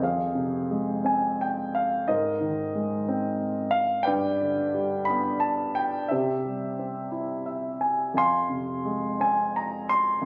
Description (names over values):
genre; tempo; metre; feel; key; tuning
classical, lyrical solo piano; 59 BPM (dotted quarters); 6/8; rubato; F minor; A4 = 440 Hz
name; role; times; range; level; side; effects
warm concert grand piano; solo; 0.0-10.3 s; F2 to C6; -26 LUFS; equal; none
room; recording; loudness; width
moderate scoring stage reverb, RT60 1.7 s; recorded on a phone in the room, club reverb, compression; -27 LUFS; mono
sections
0.0-10.3 A section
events
grand piano fill 7.1-8.2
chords
0.0 Fm; 2.1 Abadd9; 4.1 G; 6.1 C; 8.2 Fm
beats
| 0.01 1.06 | 2.08 3.08 | 4.06 5.08 | 6.11 7.12 | 8.15 9.20 | 10.23